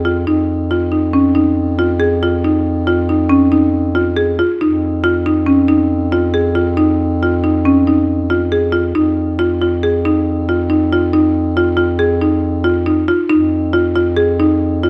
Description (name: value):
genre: contemporary instrumental, chamber music in an uneven meter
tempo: 138 BPM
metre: 5/4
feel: straight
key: F minor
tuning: A4 = 440 Hz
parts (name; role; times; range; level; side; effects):
- warm bass clarinet; bass; 0.0-14.9 s; F2; -21 LUFS; equal; none
- buzzing marimba with hard mallets; arpeggios; 0.1-14.9 s; Db4 to Ab4; -16 LUFS; equal; none
room: light reverb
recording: close, detailed microphones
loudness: -15 LUFS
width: mono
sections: 0.0-9.0 A section; 9.0-14.9 B section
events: none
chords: 0.0 F7(no3); 9.0 N.C.